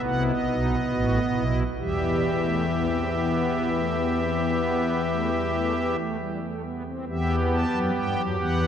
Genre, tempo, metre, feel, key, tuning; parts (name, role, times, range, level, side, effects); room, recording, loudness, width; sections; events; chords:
classical, baroque-style 4-part fugue for pipe organ; 46 BPM (dotted quarters); 12/8; straight; E minor; A4 = 440 Hz
pipe organ, strings celeste; solo; 0.0-8.7 s; A1 to A5; -23 LUFS; equal
wet cathedral reverb, RT60 5.2 s; dark, warm production; -23 LUFS; side -8 dB against mid
0.0-7.1 A section; 7.1-8.7 B section
0.0 B7; 1.8 Em